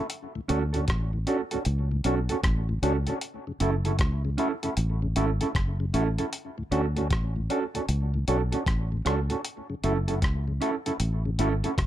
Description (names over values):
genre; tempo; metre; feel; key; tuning
roots reggae; 77 BPM; 4/4; swing 64% on 16ths; F# minor; A4 = 441 Hz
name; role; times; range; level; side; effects
mellow electric guitar; accompaniment; 0.0-11.7 s; C#4 to A4; -30 LUFS; right 6 dB; tape echo
dusty soul sampler-style drum kit; drums; 0.1-11.9 s; hi-hat, kick drum, rim click; -29 LUFS; equal; none
tonewheel organ; accompaniment; 0.4-11.7 s; D2 to F#4; -33 LUFS; left 4 dB; slow rotary speaker, tape echo
fingered electric bass; bass; 0.5-11.9 s; F#1 to D2; -26 LUFS; equal; none
room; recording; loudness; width
little or no reverb; none; -25 LUFS; side -12 dB against mid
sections
0.0-11.9 A section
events
none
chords
0.1 Dmaj7; 3.2 F#m7; 6.3 Dmaj7; 9.4 F#m7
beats
| 0.10 0.88 1.66 2.43 | 3.21 3.99 4.77 5.55 | 6.33 7.11 7.88 8.66 | 9.44 10.22 11.00 11.78